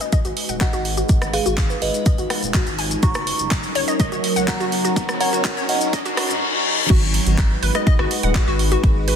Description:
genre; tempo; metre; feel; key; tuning
progressive house; 124 BPM; 4/4; straight; G# dorian; A4 = 440 Hz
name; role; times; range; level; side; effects
glassy synth bell; melody; 0.0-6.1 s; G#4 to C#6; -26 LUFS; right 1 dB; chorus, tremolo, sidechain pumping, ping-pong delay
evolving wavetable pad; sustained chords; 0.0-9.2 s; F#3 to B4; -25 LUFS; right 1 dB; phaser, built-in reverb, sidechain pumping
glassy wavetable pluck; arpeggios; 0.0-9.1 s; F#4 to G#5; -26 LUFS; left 2 dB; chorus, sidechain pumping, dub echo
house drum kit; drums; 0.0-9.2 s; crash cymbal, handclaps, hi-hat, ride cymbal, rim click; -26 LUFS; right 2 dB; soft clipping on snare
cabasa; percussion; 0.0-6.4 s; none; -32 LUFS; left 6 dB; none
riser and reverse cymbal; sound effects; 1.4-6.9 s; none; -27 LUFS; left 3 dB; none
electronic kick drum; drums; 0.1-8.9 s; none; -18 LUFS; equal; none
saturated sub bass; bass; 0.2-9.1 s; D#1 to F#2; -24 LUFS; equal; sidechain pumping
room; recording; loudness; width
light reverb; dense, heavily limited modern master, high-pass filter; -17 LUFS; side -8 dB against mid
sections
0.0-6.9 A section; 6.9-9.2 B section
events
build-up 0.0-6.9; filter sweep on synth arpeggio sound 0.0-6.9; filter sweep on ambient pad 0.0-6.9; filter sweep 0.0-6.9; riser 1.4-6.4; reverse cymbal 5.9-6.9; drop 6.9-9.2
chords
0.0 G#m7; 3.0 F#6; 6.9 G#m7

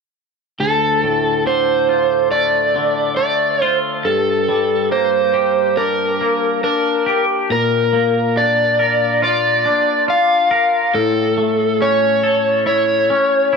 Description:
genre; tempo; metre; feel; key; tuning
rock; 70 BPM; 4/4; straight; D minor; A4 = 440 Hz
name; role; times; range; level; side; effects
overdriven slide guitar; melody; 0.6-13.6 s; A4 to F5; -15 LUFS; equal; analog delay
twangy electric guitar; arpeggios; 0.6-13.6 s; D2 to Bb4; -19 LUFS; left 2 dB; lush chorus, analog delay
room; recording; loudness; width
wet large studio reverb, RT60 0.9 s; none; -14 LUFS; side -5 dB against mid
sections
0.6-13.6 A section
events
none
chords
0.6 Dm; 4.0 Gmadd9; 7.5 Bb; 10.9 A

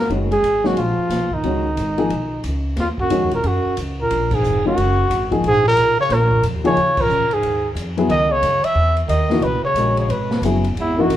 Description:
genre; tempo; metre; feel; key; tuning
modal jazz; 180 BPM; 4/4; swing 63% on 8ths; Eb phrygian; A4 = 439 Hz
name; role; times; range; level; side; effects
breathy trumpet; melody; 0.0-11.2 s; Eb4 to Fb5; -19 LUFS; equal; none
breathy bass clarinet; second line; 0.0-11.2 s; Fb2 to Ab3; -26 LUFS; right 4 dB; none
upright bass; bass; 0.0-11.2 s; F1 to Gb2; -22 LUFS; equal; none
dark baby grand piano; accompaniment; 0.1-11.1 s; Eb3 to Bb4; -21 LUFS; left 3 dB; none
swinging big-band drum kit; drums; 0.1-11.2 s; crash cymbal, hi-hat, kick drum, ride cymbal, snare drum; -29 LUFS; equal; none
room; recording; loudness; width
moderate large studio reverb, RT60 1.3 s; band playing live in one room; -16 LUFS; side -12 dB against mid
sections
0.0-2.8 A section; 2.8-11.2 B section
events
band accent 4.3, 6.9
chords
0.0 Db13sus4; 2.8 Ebm9; 8.1 Dbm9

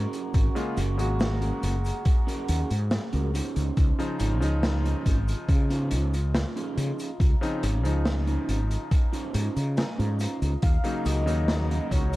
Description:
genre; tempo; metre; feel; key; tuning
vaporwave; 70 BPM; 4/4; straight; Db major; A4 = 440 Hz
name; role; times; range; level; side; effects
warbly tape-like pad; sustained chords; 0.0-12.2 s; F4 to Db6; -39 LUFS; equal; chorus, built-in reverb
electric guitar at the edge of break-up; riff; 0.0-12.0 s; Db4 to Ab5; -35 LUFS; right 3 dB; wide subtle chorus, tape echo
mellow fretless electric bass; bass; 0.0-12.2 s; Gb1 to Db3; -26 LUFS; equal; none
raw garage drum kit; drums; 0.1-12.2 s; cabasa, hi-hat, snare drum; -32 LUFS; equal; none
electronic kick drum; drums; 0.3-12.1 s; none; -23 LUFS; equal; none
clear electric grand piano; accompaniment; 0.6-12.2 s; Db3 to C5; -33 LUFS; left 1 dB; wide subtle chorus, tape echo
warm velvety synth lead; melody; 10.6-12.2 s; Db5 to F5; -34 LUFS; left 1 dB; chorus, cassette tape
room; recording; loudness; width
studio reverb; dark, warm production; -23 LUFS; side -18 dB against mid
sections
0.0-12.2 A section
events
clean electric guitar fill 9.3-10.6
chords
0.0 Ab9sus4; 3.3 Dbmaj9; 10.6 Ebm7

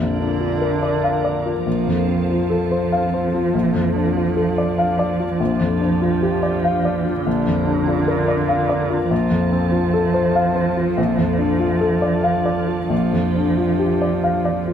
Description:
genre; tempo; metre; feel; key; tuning
neoclassical piano and strings; 96 BPM; 3/4; rubato; Bb major; A4 = 440 Hz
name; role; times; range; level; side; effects
muted cello; second line; 0.0-14.7 s; D3 to F3; -22 LUFS; right 6 dB; none
warm upright piano; accompaniment; 0.0-14.7 s; Bb1 to F5; -19 LUFS; left 3 dB; none
glassy FM pad; sustained chords; 0.0-14.7 s; C4 to Bb4; -27 LUFS; left 2 dB; ensemble chorus, built-in reverb
room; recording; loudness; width
light reverb; close, detailed microphones; -17 LUFS; side -8 dB against mid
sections
0.0-14.7 A section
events
none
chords
0.0 Bb; 1.7 F/Bb; 3.5 Dm/Bb; 5.4 Gm7/Bb; 7.3 Bb; 9.1 F/Bb; 11.0 Dm/Bb; 12.9 Gm7/Bb

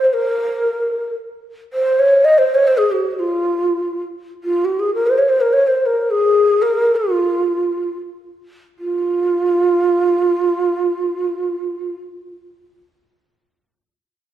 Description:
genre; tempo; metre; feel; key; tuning
Persian modal ensemble; free time; none; none; F dastgah shur; A4 = 440 Hz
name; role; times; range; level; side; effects
breathy mellow ney; solo; 0.0-12.0 s; F4 to Eb5; -15 LUFS; right 1 dB; none
room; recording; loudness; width
wet recital hall reverb, RT60 1.7 s; minimal, uncompressed stereo recording; -15 LUFS; side -11 dB against mid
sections
0.0-8.8 A section; 8.8-11.5 B section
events
none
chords
none

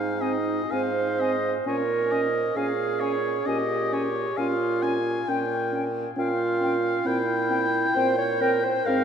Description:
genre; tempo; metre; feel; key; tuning
classical, slow romantic movement for wind quintet; 66 BPM; 4/4; rubato; unclear; A4 = 440 Hz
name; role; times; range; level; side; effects
warm oboe; second line; 0.0-9.0 s; Db5 to Ab5; -28 LUFS; left 4 dB; none
mellow clarinet; accompaniment; 0.0-9.0 s; Eb4 to Db5; -26 LUFS; right 4 dB; none
mellow bassoon; bass; 0.0-9.0 s; Ab2 to Bb2; -30 LUFS; right 2 dB; none
hollow concert flute; melody; 0.2-9.0 s; F5 to Ab5; -35 LUFS; left 8 dB; none
dark French horn; accompaniment; 0.2-9.0 s; C4 to Db4; -32 LUFS; equal; none
room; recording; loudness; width
wet cathedral reverb, RT60 6.6 s; in a vast, echoing space; -22 LUFS; side -7 dB against mid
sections
0.0-9.0 A section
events
none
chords
0.0 Ab; 1.7 Bbm7; 5.3 Gdim/Bb; 7.1 C7/Bb

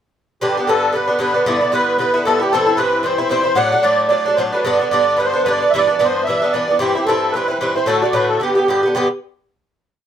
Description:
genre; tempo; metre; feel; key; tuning
celtic folk, Celtic reel; 225 BPM; 4/4; swing 56% on 8ths; G major; A4 = 441 Hz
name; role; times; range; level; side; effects
musette accordion; melody; 0.4-9.1 s; G4 to F#5; -16 LUFS; right 1 dB; none
Irish bouzouki; accompaniment; 0.4-9.1 s; G2 to G4; -18 LUFS; left 1 dB; none
room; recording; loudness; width
light reverb; close, detailed microphones; -14 LUFS; side -9 dB against mid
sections
0.4-8.9 A section; 8.9-10.0 final chord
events
none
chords
0.4 G; 1.5 Em7; 2.5 C; 3.6 D; 4.7 G; 5.7 Em7; 6.8 C; 7.9 D; 8.4 G

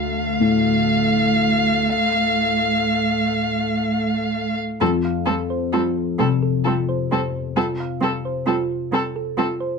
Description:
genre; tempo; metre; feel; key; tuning
neoclassical piano and strings; 40-44 BPM (dotted quarters); 6/8; rubato; F major; A4 = 439 Hz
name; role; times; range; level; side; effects
muted violin; melody; 0.0-9.5 s; A4 to F5; -22 LUFS; left 3 dB; none
muted cello; second line; 0.0-9.5 s; G3 to A3; -24 LUFS; right 6 dB; none
felt-muted upright piano; accompaniment; 0.0-9.8 s; D2 to C3; -23 LUFS; left 4 dB; none
muted viola; accompaniment; 4.8-9.5 s; C4; -26 LUFS; right 4 dB; none
thumb-piano-like synth pluck; arpeggios; 4.8-9.7 s; F4 to F5; -26 LUFS; right 5 dB; chorus, tape echo
room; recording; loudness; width
moderate studio reverb, RT60 0.7 s; dark, warm production; -18 LUFS; side -5 dB against mid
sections
0.0-4.8 A section; 4.8-9.8 A section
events
none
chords
0.0 Dm; 4.8 F5

